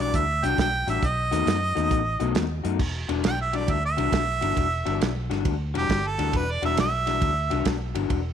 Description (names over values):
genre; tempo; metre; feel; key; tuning
electric blues shuffle; 136 BPM; 4/4; swing 67% on 8ths; E minor; A4 = 440 Hz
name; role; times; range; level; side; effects
bright harmonica; melody; 0.0-7.6 s; G4 to G5; -26 LUFS; right 4 dB; overdrive
electric guitar through a small old amp; riff; 0.0-8.2 s; B2 to F#4; -28 LUFS; left 14 dB; none
vintage muted fingered electric bass; bass; 0.0-8.3 s; E1 to F#2; -28 LUFS; equal; none
warm soul drum kit; drums; 0.1-8.2 s; crash cymbal, hi-hat, kick drum, ride cymbal, snare drum; -29 LUFS; right 3 dB; none
room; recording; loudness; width
light reverb; 1960s-style stereo; -22 LUFS; side -8 dB against mid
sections
0.0-2.8 A section; 2.8-8.3 B section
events
harmonica solo 2.8-8.3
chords
0.0 Em9; 1.0 B7; 2.8 Em9